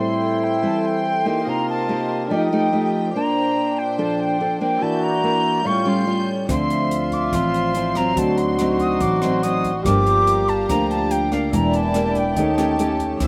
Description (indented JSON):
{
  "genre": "bossa nova",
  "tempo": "143 BPM",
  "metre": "4/4",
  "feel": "straight",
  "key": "D minor",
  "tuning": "A4 = 440 Hz",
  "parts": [
    { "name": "jazz flute", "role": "melody", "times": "0.0-13.0 s", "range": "F5 to Eb6", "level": "-26 LUFS", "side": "equal", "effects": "none" },
    { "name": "breathy trombone", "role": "second line", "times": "0.0-13.0 s", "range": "D4 to G4", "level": "-26 LUFS", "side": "equal", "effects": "slapback echo" },
    { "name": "nylon-string guitar", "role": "accompaniment", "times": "0.0-13.3 s", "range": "G2 to C5", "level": "-26 LUFS", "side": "equal", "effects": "none" },
    { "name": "vibraphone with medium hard mallets", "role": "accompaniment", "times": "0.0-13.3 s", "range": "D4 to E6", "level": "-31 LUFS", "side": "equal", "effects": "slapback echo" },
    { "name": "rich studio string section", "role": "sustained chords", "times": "0.0-13.3 s", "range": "Bb2 to G6", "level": "-32 LUFS", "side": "equal", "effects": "none" },
    { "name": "upright bass", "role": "bass", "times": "6.5-13.3 s", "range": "E1 to Eb2", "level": "-26 LUFS", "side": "equal", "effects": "none" },
    { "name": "open jazz drum kit", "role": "drums", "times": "6.5-13.3 s", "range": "hi-hat, kick drum, rim click", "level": "-33 LUFS", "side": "equal", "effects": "none" }
  ],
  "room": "little or no reverb",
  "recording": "recorded outdoors, with no room sound",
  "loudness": "-20 LUFS",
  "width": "mono",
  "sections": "0.0-13.2 A section",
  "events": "none",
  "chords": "0.0 Am7; 1.5 Cm7; 2.3 F9; 3.1 Bbmaj9; 4.8 Em7b5; 5.7 A7alt; 6.5 Dm9; 8.2 D7b9; 9.8 Gm7; 11.5 Em7b5; 12.4 Eb7#11"
}